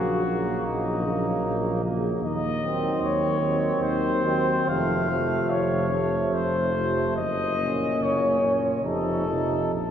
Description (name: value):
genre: classical, hymn-like piece for brass band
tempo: 72 BPM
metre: 3/4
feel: uneven beats, rubato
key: unclear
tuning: A4 = 440 Hz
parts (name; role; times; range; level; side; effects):
- mellow cornet; melody; 0.0-9.9 s; Eb4 to F5; -26 LUFS; left 2 dB; none
- warm flugelhorn; second line; 0.0-9.7 s; A3 to Eb4; -29 LUFS; right 3 dB; none
- clear trombone; accompaniment; 0.0-9.7 s; Bb2 to Eb3; -30 LUFS; right 2 dB; none
- clear trombone section; accompaniment; 0.0-9.7 s; F3 to Bb3; -31 LUFS; left 1 dB; none
- mellow tuba; bass; 0.0-9.9 s; F1 to Eb2; -30 LUFS; equal; none
room: wet cathedral reverb, RT60 4.6 s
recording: recorded in a church or concert hall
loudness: -22 LUFS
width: side -9 dB against mid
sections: 0.0-9.9 A section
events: none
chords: 0.0 Gb/Bb; 2.2 Cdim/Eb; 4.7 F; 7.2 Gb; 8.8 F7